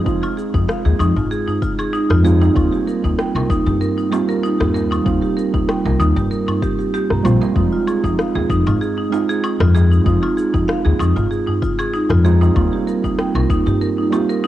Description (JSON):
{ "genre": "organic downtempo", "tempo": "96 BPM", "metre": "4/4", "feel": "swing 54% on 16ths", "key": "F minor", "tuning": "A4 = 438 Hz", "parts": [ { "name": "muted felt-like synth keys", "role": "accompaniment", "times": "0.0-14.5 s", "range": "G3 to F4", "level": "-20 LUFS", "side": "right 5 dB", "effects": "chorus, sidechain pumping, cassette tape, tape echo" }, { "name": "marimba with medium hard mallets", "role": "arpeggios", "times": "0.0-14.5 s", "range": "Eb4 to Bb5", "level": "-22 LUFS", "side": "equal", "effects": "cassette tape, tape echo" }, { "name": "upright bass", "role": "bass", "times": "0.1-13.8 s", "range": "Bb1 to Ab2", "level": "-16 LUFS", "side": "left 1 dB", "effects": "sidechain pumping" }, { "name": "electronic cabasa, woodblock and rim click", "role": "drums", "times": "0.1-14.5 s", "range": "none", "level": "-27 LUFS", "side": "left 2 dB", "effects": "overdrive, cassette tape" }, { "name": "electronic kick drum", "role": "drums", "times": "0.1-13.6 s", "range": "none", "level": "-24 LUFS", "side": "left 1 dB", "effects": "cassette tape" }, { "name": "darbuka", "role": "percussion", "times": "0.5-14.3 s", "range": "none", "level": "-28 LUFS", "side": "right 2 dB", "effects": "none" } ], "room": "moderate spring reverb, RT60 2.6 s", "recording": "home recording on cassette", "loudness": "-15 LUFS", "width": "side -13 dB against mid", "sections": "0.0-7.6 A section; 7.6-14.5 A section", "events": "none", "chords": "0.0 Fm7; 2.6 Eb6; 7.6 Fm7; 12.6 Eb6" }